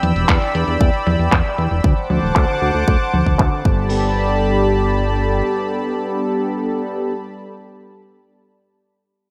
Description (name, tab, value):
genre	italo disco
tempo	116 BPM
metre	4/4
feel	straight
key	G major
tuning	A4 = 440 Hz
part	warm analog pad	sustained chords	0.0-7.1 s	G3 to E6	-23 LUFS	equal	chorus
part	mellow synth brass	stabs	0.0-7.1 s	D3 to C5	-27 LUFS	equal	chorus, digital delay
part	fat analog bass	bass	0.0-5.4 s	D1 to E2	-22 LUFS	equal	none
part	clean 12-bit digital drum machine	drums	0.0-3.8 s	crash cymbal, handclaps, hi-hat, toms	-25 LUFS	equal	overdrive, low-pass filter on hats, small room ambience, low-pass filter on cymbals, low-pass filter on toms, low-pass filter on snare
part	electronic kick drum	drums	0.3-3.8 s	none	-19 LUFS	equal	overdrive, small room ambience
room	moderate lush hall reverb, RT60 2.3 s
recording	bright 1980s-style digital production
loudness	-18 LUFS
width	mono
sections	0.0-3.9 A section; 3.9-8.0 B section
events	filter sweep on drum 0.0-3.9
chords	0.0 Em7; 1.8 D7; 3.7 Gadd9